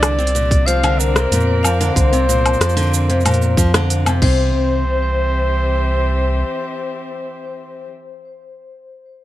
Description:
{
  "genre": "folktronica",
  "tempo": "93 BPM",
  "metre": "4/4",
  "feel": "straight",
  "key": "C mixolydian",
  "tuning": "A4 = 440 Hz",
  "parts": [
    { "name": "mellow flugelhorn", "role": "melody", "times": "0.0-7.9 s", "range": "Bb4 to F5", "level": "-23 LUFS", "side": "equal", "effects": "ping-pong delay" },
    { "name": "dark string quartet", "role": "sustained chords", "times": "0.0-7.9 s", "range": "E3 to E6", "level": "-28 LUFS", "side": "equal", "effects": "none" },
    { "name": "picked steel-string acoustic guitar", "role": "arpeggios", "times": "0.0-4.8 s", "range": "Bb2 to F3", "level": "-21 LUFS", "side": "equal", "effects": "none" },
    { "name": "round analog bass", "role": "bass", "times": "0.0-6.4 s", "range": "C2 to F2", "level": "-17 LUFS", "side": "equal", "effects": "tube saturation" },
    { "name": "organic electronic drum kit", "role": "drums", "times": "0.0-4.4 s", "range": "cabasa, crash cymbal, hi-hat, rim click, woodblock", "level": "-20 LUFS", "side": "equal", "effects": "none" },
    { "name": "electronic kick drum", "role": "drums", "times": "0.5-4.3 s", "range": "none", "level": "-16 LUFS", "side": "equal", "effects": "none" },
    { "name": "vibraphone with medium mallets", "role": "second line", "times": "0.7-9.2 s", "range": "C5 to F5", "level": "-25 LUFS", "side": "left 5 dB", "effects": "tape echo" }
  ],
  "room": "small room ambience",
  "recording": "none",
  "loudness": "-14 LUFS",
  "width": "side -14 dB against mid",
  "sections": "0.0-4.5 A section; 4.5-7.1 B section",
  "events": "none",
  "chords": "0.0 C9sus4; 4.2 C",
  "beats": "0.03 0.67 1.32 | 1.96 2.61 3.25 3.90 | 4.54 5.19 5.83 6.48"
}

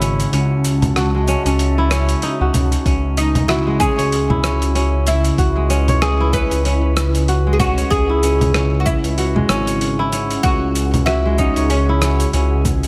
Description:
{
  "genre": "organic downtempo",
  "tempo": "95 BPM",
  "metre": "4/4",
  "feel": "swing 57% on 16ths",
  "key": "unclear",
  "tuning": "A4 = 440 Hz",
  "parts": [
    { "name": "ethereal airy pad", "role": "sustained chords", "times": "0.0-12.9 s", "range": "C#3 to A5", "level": "-27 LUFS", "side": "equal", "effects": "ensemble chorus, built-in reverb, phaser, sidechain pumping" },
    { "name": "kora", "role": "arpeggios", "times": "0.0-12.9 s", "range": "G#3 to C#5", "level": "-23 LUFS", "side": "equal", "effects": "delay" },
    { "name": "smooth synth bass", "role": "bass", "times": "0.0-12.9 s", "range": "G#1 to C#2", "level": "-21 LUFS", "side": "equal", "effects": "sidechain pumping" },
    { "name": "dusty soul sampler-style drum kit", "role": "drums", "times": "0.0-12.9 s", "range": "cabasa, congas, hi-hat, rim click", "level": "-25 LUFS", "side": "equal", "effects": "overdrive, small room ambience" },
    { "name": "electronic kick drum", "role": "drums", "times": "2.9-12.8 s", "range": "none", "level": "-22 LUFS", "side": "equal", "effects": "small room ambience" },
    { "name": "oud", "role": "melody", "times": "3.2-12.6 s", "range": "C#4 to B4", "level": "-24 LUFS", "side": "equal", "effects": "delay" }
  ],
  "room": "light reverb",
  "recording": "none",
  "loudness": "-17 LUFS",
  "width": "mono",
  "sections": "0.0-12.9 A section",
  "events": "kick drops out 0.3-2.9",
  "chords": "0.0 F#m13/G#; 2.9 C#m9; 7.9 F#sus2",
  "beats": "| 0.33 0.96 1.59 2.23 | 2.86 3.49 4.12 4.75 | 5.38 6.02 6.65 7.28 | 7.91 8.54 9.17 9.81 | 10.44 11.07 11.70 12.33"
}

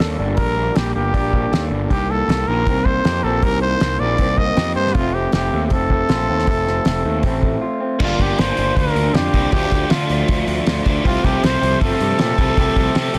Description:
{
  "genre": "indie rock",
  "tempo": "158 BPM",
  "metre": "4/4",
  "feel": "straight",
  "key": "unclear",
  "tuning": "A4 = 440 Hz",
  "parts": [
    { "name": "growling trumpet", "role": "melody", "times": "0.0-13.2 s", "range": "F4 to Eb5", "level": "-24 LUFS", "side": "equal", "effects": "digital delay" },
    { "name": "electric guitar through a small old amp", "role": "riff", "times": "0.0-13.2 s", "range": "Eb3 to A4", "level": "-26 LUFS", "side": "equal", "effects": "none" },
    { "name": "fuzz picked electric bass", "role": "bass", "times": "0.0-13.2 s", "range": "F1 to D3", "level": "-24 LUFS", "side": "equal", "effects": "overdrive" },
    { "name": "cloth-damped thuddy drum kit", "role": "drums", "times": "0.0-13.2 s", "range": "crash cymbal, hi-hat, kick drum, snare drum", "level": "-22 LUFS", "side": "equal", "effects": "none" },
    { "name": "biting overdriven guitar", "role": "riff", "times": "8.0-13.2 s", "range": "G2 to D4", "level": "-26 LUFS", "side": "equal", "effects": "ensemble chorus, digital delay" },
    { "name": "combo organ", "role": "sustained chords", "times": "11.0-13.2 s", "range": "A4 to C6", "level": "-37 LUFS", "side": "equal", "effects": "none" }
  ],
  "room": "small room ambience",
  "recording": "dense, heavily limited modern master",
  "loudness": "-18 LUFS",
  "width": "mono",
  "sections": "0.0-8.0 A section; 8.0-13.2 B section",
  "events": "break 7.6-8.0",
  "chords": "0.0 Gmadd9; 1.9 Cm7; 5.0 F; 8.0 Gm7; 9.5 Dm; 11.1 Fadd9",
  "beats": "0.00 | 0.38 0.76 1.14 1.52 | 1.90 2.28 2.66 3.04 | 3.43 3.81 4.19 4.57 | 4.95 5.33 5.71 6.10 | 6.48 6.86 7.24 7.62 | 8.00 8.38 8.77 9.15 | 9.53 9.91 10.29 10.67 | 11.05 11.43 11.81 12.19 | 12.57 12.95"
}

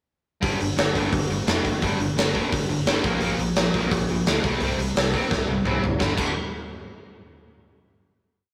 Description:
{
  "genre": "punk rock",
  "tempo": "172 BPM",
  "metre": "4/4",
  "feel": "straight",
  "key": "G minor",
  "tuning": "A4 = 440 Hz",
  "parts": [
    { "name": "distorted electric guitar", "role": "riff", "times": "0.4-6.3 s", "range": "G2 to C4", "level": "-29 LUFS", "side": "equal", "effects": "distortion" },
    { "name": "modern bright picked electric bass", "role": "bass", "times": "0.4-6.3 s", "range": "F1 to D2", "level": "-32 LUFS", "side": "equal", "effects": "none" },
    { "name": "big rock drum kit", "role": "drums", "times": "0.4-6.3 s", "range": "crash cymbal, hi-hat, kick drum, snare drum, toms", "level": "-26 LUFS", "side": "equal", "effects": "none" }
  ],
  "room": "light reverb",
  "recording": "rough rehearsal-room recording, warm saturation",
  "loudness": "-23 LUFS",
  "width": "mono",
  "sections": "0.4-6.0 verse; 6.0-7.4 final chord",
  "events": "drum fill 5.3-6.0",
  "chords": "0.4 G5; 3.0 Bb5; 4.4 C5; 6.0 G5",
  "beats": "| 0.43 0.78 1.13 1.48 | 1.82 2.17 2.52 2.87 | 3.22 3.57 3.92 4.27 | 4.62 4.96 5.31 5.66 | 6.01"
}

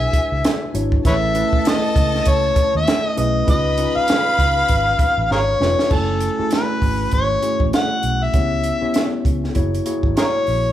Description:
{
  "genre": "lush 1970s-style soul",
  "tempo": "99 BPM",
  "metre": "4/4",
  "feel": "swing 58% on 16ths",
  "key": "F# minor from 5.9 s",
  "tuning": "A4 = 440 Hz",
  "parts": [
    { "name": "overdriven harmonica", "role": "melody", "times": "0.0-10.7 s", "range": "G#4 to F#5", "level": "-19 LUFS", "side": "left 2 dB", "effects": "none" },
    { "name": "warm studio string section", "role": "second line", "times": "0.0-5.6 s", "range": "G#4 to B5", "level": "-29 LUFS", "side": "left 2 dB", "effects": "none" },
    { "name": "tine electric piano", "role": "accompaniment", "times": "0.0-10.7 s", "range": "G#3 to G#5", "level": "-24 LUFS", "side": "equal", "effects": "none" },
    { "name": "vintage muted fingered electric bass", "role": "bass", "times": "0.0-10.7 s", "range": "E#1 to D#2", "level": "-23 LUFS", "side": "right 1 dB", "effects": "none" },
    { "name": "compact cocktail drum kit", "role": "drums", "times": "0.1-10.6 s", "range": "crash cymbal, hi-hat, kick drum, snare drum", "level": "-20 LUFS", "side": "right 1 dB", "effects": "none" }
  ],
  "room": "moderate large studio reverb, RT60 1.4 s",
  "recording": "band playing live in one room",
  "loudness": "-16 LUFS",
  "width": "side -12 dB against mid",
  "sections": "0.0-5.9 A section; 5.9-10.7 B section",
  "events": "drum fill 5.3-5.9",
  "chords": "0.0 E7; 1.0 Amaj7; 3.5 C#7; 5.9 F#m9; 8.3 C#m7b5; 9.6 F#7",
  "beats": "0.44 | 1.05 1.65 2.26 2.87 | 3.48 4.08 4.69 5.30 | 5.91 6.51 7.12 7.73 | 8.34 8.95 9.55 10.16"
}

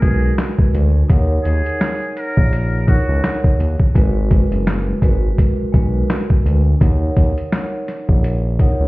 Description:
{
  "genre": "hip hop, boom-bap hip-hop",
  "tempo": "84 BPM",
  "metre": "4/4",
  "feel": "swing 56% on 16ths",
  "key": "G# minor",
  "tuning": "A4 = 440 Hz",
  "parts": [
    { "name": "trumpet with metal mute", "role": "melody", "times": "0.0-3.4 s", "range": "F#4 to A#4", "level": "-27 LUFS", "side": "equal", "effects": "high-pass filter, low-pass filter, plate reverb, digital delay" },
    { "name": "vibraphone with soft mallets", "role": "accompaniment", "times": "0.0-8.9 s", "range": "G#3 to F#5", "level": "-22 LUFS", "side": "equal", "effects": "cassette tape, high-pass filter, low-pass filter, plate reverb" },
    { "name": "smooth synth bass", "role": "bass", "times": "0.0-8.9 s", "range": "F#1 to D#2", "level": "-16 LUFS", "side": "equal", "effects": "none" },
    { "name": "boom bap sampler-style drum kit", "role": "drums", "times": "0.0-8.8 s", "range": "handclaps, hi-hat, kick drum, snare drum", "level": "-15 LUFS", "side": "equal", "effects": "none" }
  ],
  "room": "little or no reverb",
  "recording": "heard muffled through a wall, stone room reverb, EQ",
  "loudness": "-14 LUFS",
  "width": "side -21 dB against mid",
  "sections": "0.0-8.9 A section",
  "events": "none",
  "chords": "0.0 G#m9; 1.1 D#m7; 4.0 G#m9; 6.8 D#m7",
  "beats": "0.38 | 1.10 1.81 2.53 3.24 | 3.96 4.67 5.38 6.10 | 6.81 7.53 8.24"
}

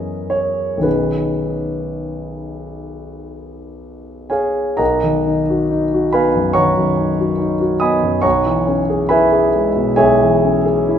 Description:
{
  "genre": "classical, impressionist solo piano",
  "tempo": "57-73 BPM",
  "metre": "4/4",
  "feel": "rubato",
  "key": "B major",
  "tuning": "A4 = 440 Hz",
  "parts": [
    { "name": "dark concert grand piano", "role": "solo", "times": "0.0-11.0 s", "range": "B1 to D#6", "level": "-15 LUFS", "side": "equal", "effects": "none" }
  ],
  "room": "moderate scoring stage reverb, RT60 1.6 s",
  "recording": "minimal, uncompressed stereo recording",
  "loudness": "-14 LUFS",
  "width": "side -8 dB against mid",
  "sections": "0.0-4.8 A section; 4.8-11.0 B section",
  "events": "none",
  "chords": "0.0 F#9sus4; 0.8 B69; 4.8 Bmaj7; 8.2 C#m7/B",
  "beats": "| 0.85 1.85 2.83 3.82 | 4.80 5.70 6.56 7.40 | 8.24 9.12 9.99 10.88"
}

